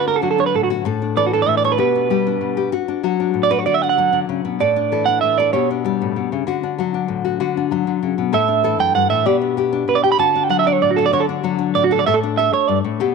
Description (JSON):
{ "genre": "highlife", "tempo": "129 BPM (dotted quarters)", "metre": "12/8", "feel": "straight", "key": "D major", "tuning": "A4 = 436 Hz", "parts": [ { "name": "clean electric guitar", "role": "melody", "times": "0.0-12.8 s", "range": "F#4 to B5", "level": "-17 LUFS", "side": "right 10 dB", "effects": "none" }, { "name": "nylon-string guitar", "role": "accompaniment", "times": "0.0-13.1 s", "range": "F#2 to A4", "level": "-19 LUFS", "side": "left 10 dB", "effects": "none" } ], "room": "light reverb", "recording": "1960s-style stereo with parts hard left and right", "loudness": "-16 LUFS", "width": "side -4 dB against mid", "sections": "0.0-13.1 A section", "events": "clean electric guitar solo 0.0-13.1", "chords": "0.0 D; 0.9 Asus4; 1.8 G/B; 2.7 D; 4.6 Asus4; 5.5 G/B; 6.5 D; 8.3 Asus4; 9.3 G/B; 10.2 D; 12.1 Asus4" }